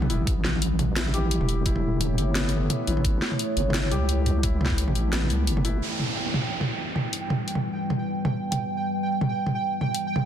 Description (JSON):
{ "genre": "half-time drum and bass", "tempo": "173 BPM", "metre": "4/4", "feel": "swing 55% on 16ths, half-time", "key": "E dorian", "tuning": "A4 = 440 Hz", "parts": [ { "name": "deep dark ambient pad", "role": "sustained chords", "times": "0.0-10.3 s", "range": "G3 to A5", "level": "-31 LUFS", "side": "left 1 dB", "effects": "chorus, built-in reverb, sidechain pumping" }, { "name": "felt-muted upright piano", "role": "arpeggios", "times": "0.0-5.8 s", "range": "B3 to G4", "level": "-33 LUFS", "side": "left 3 dB", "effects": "low-pass filter, tape echo" }, { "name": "deep soft wobble bass", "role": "bass", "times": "0.0-5.8 s", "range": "E1 to C#2", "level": "-24 LUFS", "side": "equal", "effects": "chorus" }, { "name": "drum and bass drum kit", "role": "drums", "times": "0.0-10.2 s", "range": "hi-hat, snare drum, toms", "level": "-28 LUFS", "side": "right 1 dB", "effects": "none" }, { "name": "electronic kick drum", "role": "drums", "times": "0.3-4.8 s", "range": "none", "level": "-25 LUFS", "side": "equal", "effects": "none" }, { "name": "downlifter", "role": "sound effects", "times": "5.8-8.6 s", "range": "none", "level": "-32 LUFS", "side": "right 2 dB", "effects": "none" }, { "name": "pulsing gated texture", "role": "texture", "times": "5.8-10.3 s", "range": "G5", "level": "-30 LUFS", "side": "right 4 dB", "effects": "chorus, built-in reverb" } ], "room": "light reverb", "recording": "dense, heavily limited modern master", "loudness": "-23 LUFS", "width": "side -9 dB against mid", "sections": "0.0-5.8 A section; 5.8-10.3 B section", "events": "none", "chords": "0.3 A; 5.8 Em" }